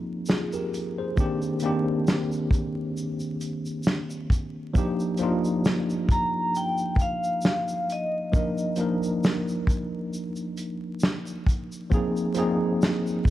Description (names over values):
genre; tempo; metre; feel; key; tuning
lo-fi hip hop; 67 BPM; 4/4; swing 56% on 16ths; Eb major; A4 = 440 Hz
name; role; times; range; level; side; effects
tine electric piano; accompaniment; 0.0-13.3 s; Eb3 to C5; -27 LUFS; equal; medium stereo tremolo, low-pass filter
warm soul drum kit; drums; 0.3-13.3 s; hi-hat, kick drum, shaker, snare drum; -24 LUFS; equal; none
vibraphone with medium hard mallets; melody; 6.1-8.8 s; Eb5 to Bb5; -27 LUFS; left 1 dB; low-pass filter, analog delay
room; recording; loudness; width
light reverb, studio reverb; vinyl crackle; -24 LUFS; side -14 dB against mid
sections
0.0-13.3 A section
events
none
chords
0.0 Ab69; 1.2 Cm7; 4.8 Ebmaj7; 11.9 Ab69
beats
0.28 | 1.17 2.07 2.96 3.86 | 4.75 5.65 6.54 7.44 | 8.34 9.23 10.13 11.02 | 11.92 12.81